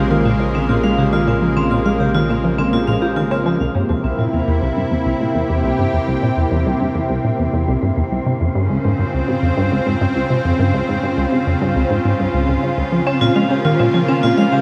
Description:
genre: ambient, sequencer-driven space music.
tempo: 103 BPM.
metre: 4/4.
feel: straight.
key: unclear.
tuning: A4 = 439 Hz.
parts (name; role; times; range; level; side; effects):
lush unison pad; sustained chords; 0.0-14.6 s; C3 to G4; -21 LUFS; equal; chorus.
vibraphone with medium hard mallets; arpeggios; 0.0-3.4, 13.1-14.6 s; C4 to F5; -24 LUFS; equal; tape echo.
plucky analog bass; riff; 0.0-14.6 s; C2 to F4; -20 LUFS; equal; analog chorus, tape echo.
warm sub bass; bass; 0.0-3.6 s; Bb1; -28 LUFS; equal; none.
wind-like tuned noise texture; texture; 0.0-14.6 s; C5; -34 LUFS; equal; built-in reverb.
room: wet plate reverb, RT60 3.6 s.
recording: dreamy mix soaked in reverb.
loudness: -17 LUFS.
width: mono.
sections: 0.0-3.6 A section; 3.6-14.6 B section.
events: filter sweep on analog synth bass 0.0-3.6.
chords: 0.0 Bbm7; 3.6 C7; 8.3 Dbmaj7; 12.9 Bbm.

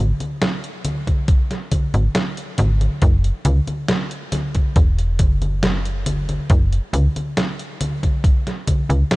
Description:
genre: vaporwave.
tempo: 69 BPM.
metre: 4/4.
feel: straight.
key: unclear.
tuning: A4 = 439 Hz.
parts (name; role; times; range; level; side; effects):
slap-like FM bass; bass; 0.0-9.0 s; E1 to C#2; -17 LUFS; equal; tube saturation.
detuned 8-bit digital drum machine; drums; 0.2-9.2 s; congas, hi-hat, snare drum; -22 LUFS; equal; overdrive, vintage 12-bit sampler grit.
electronic kick drum; drums; 1.1-8.9 s; none; -16 LUFS; equal; overdrive, vintage 12-bit sampler grit.
room: little or no reverb.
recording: tape stop.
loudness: -17 LUFS.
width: side -21 dB against mid.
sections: 0.0-9.2 A section.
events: none.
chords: none.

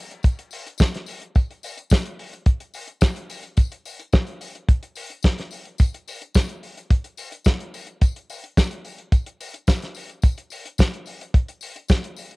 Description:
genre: disco.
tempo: 108 BPM.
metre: 4/4.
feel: straight.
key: none.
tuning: none.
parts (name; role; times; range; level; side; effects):
damped 70s drum kit; drums; 0.1-12.4 s; hi-hat, kick drum, snare drum; -19 LUFS; equal; none.
tambourine; percussion; 0.2-12.3 s; none; -39 LUFS; left 8 dB; none.
room: small room ambience.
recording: home recording on cassette.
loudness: -20 LUFS.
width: side -28 dB against mid.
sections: 0.0-12.4 A section.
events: none.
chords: none.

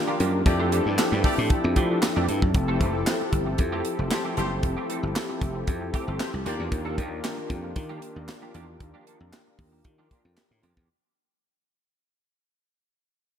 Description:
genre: early-eighties boogie funk.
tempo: 115 BPM.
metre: 4/4.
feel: straight.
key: F major.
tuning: A4 = 440 Hz.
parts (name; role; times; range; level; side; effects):
mellow synth brass; accompaniment; 0.0-10.6 s; C4 to Bb4; -30 LUFS; left 3 dB; chorus, slapback echo.
brassy analog pad; sustained chords; 0.0-10.9 s; Eb3 to A4; -33 LUFS; right 1 dB; chorus.
semi-hollow electric guitar; riff; 0.1-10.9 s; E3 to A4; -35 LUFS; right 4 dB; ensemble chorus, slapback echo.
slap bass; bass; 0.2-10.9 s; F1 to F3; -28 LUFS; equal; none.
tight funk drum kit; drums; 0.2-10.9 s; handclaps, hi-hat, kick drum, snare drum; -26 LUFS; equal; none.
clear horn section; second line; 0.5-6.6 s; A3 to D5; -34 LUFS; left 2 dB; tape echo, slapback echo.
room: light reverb, studio reverb.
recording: none.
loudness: -23 LUFS.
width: side -9 dB against mid.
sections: 0.0-2.5 A section; 2.5-10.9 B section.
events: band accent 0.5-2.5; fade-out 2.5-10.9.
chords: 0.5 Fmaj13; 2.5 Fmaj9; 6.5 Ebmaj9.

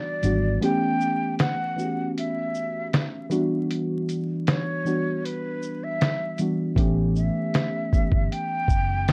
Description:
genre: lo-fi hip hop.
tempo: 78 BPM.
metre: 4/4.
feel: swing 55% on 16ths.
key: unclear.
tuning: A4 = 441 Hz.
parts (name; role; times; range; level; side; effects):
breathy jazz flute; melody; 0.0-9.1 s; B4 to G5; -32 LUFS; equal; low-pass filter.
muted felt-like synth keys; accompaniment; 0.0-9.1 s; E3 to G4; -28 LUFS; equal; chorus, cassette tape, low-pass filter.
vintage muted fingered electric bass; bass; 0.2-0.6, 6.8-9.1 s; F#1 to A1; -28 LUFS; equal; none.
lo-fi sampler-style drum kit; drums; 0.2-9.1 s; finger snaps, hi-hat, kick drum, shaker, snare drum; -26 LUFS; equal; vintage 12-bit sampler grit.
room: moderate studio reverb, RT60 0.5 s.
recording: dark, warm production, vinyl crackle.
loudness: -25 LUFS.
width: mono.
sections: 0.0-9.1 A section.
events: break 0.0-6.8.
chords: 0.0 Em9; 0.6 A9; 3.3 Em9; 6.8 A9.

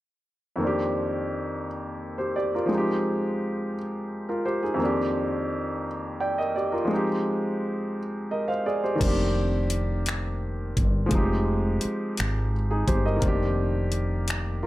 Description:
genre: slow six-eight R&B.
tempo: 57 BPM (dotted quarters).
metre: 6/8.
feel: straight.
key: unclear.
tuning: A4 = 440 Hz.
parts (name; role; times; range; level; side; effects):
clear grand piano; accompaniment; 0.6-14.7 s; F2 to G5; -26 LUFS; equal; plate reverb.
woody fretless electric bass; bass; 9.0-14.7 s; F1 to Ab1; -26 LUFS; equal; lush chorus.
smooth R&B drum kit; drums; 9.0-14.5 s; crash cymbal, finger snaps, hi-hat, kick drum; -27 LUFS; equal; none.
room: light reverb.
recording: none.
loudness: -24 LUFS.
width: side -16 dB against mid.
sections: 0.6-9.0 A section; 9.0-14.7 B section.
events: none.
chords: 0.6 Cm9/F; 2.7 Fm7; 4.8 Cm9/F; 6.9 Fm7; 9.0 Cm9/F; 11.1 Fm7; 13.2 Cm9/F.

